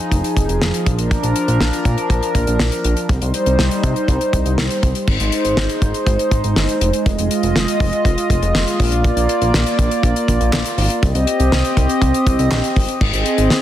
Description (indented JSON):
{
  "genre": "synth-pop",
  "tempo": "121 BPM",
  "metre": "4/4",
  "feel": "straight",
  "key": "Bb mixolydian",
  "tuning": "A4 = 440 Hz",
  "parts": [
    { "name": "chorused pulse-width pad", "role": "sustained chords", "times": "0.0-13.6 s", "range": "F3 to Eb5", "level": "-18 LUFS", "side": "equal", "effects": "none" },
    { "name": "chorused synth bass", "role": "bass", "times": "0.1-13.5 s", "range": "F1 to C3", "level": "-19 LUFS", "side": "equal", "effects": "none" },
    { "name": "damped 70s drum kit", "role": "drums", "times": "0.1-13.6 s", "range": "crash cymbal, handclaps, hi-hat, kick drum, snare drum", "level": "-19 LUFS", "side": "equal", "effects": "none" }
  ],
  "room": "light reverb, small room reverb",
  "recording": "dense, heavily limited modern master",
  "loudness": "-14 LUFS",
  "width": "side -12 dB against mid",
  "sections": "0.0-5.1 A section; 5.1-13.0 B section",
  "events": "none",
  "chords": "0.0 Fm7; 0.9 Bb; 3.1 Cm; 5.1 Ab; 7.1 Fm7; 8.8 Bb; 11.0 Cm; 13.0 Ab",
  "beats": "0.12 0.61 | 1.11 1.61 2.10 2.60 | 3.09 3.59 4.08 4.58 | 5.08 5.57 6.07 6.56 | 7.06 7.56 8.05 8.55 | 9.04 9.54 10.04 10.53 | 11.03 11.52 12.02 12.52 | 13.01 13.51"
}